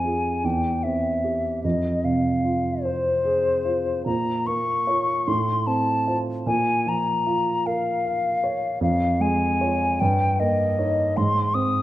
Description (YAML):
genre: classical, romantic duo for flute and grand piano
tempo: 50 BPM (dotted quarters)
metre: 6/8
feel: rubato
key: F minor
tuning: A4 = 440 Hz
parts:
  - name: hollow concert flute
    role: melody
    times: 0.0-11.8 s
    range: C5 to Eb6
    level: -23 LUFS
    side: left 2 dB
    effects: none
  - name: warm grand piano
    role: accompaniment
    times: 0.0-11.8 s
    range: E2 to F5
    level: -24 LUFS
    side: right 2 dB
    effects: none
room: moderate recital hall reverb, RT60 1.6 s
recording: none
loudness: -20 LUFS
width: side -14 dB against mid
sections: 0.0-11.8 A section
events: none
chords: 0.4 C/E; 1.6 Fm; 4.1 Bbm; 5.3 F/A; 6.5 Bbm; 8.8 Db/F; 10.0 Eb7/G; 11.2 Ab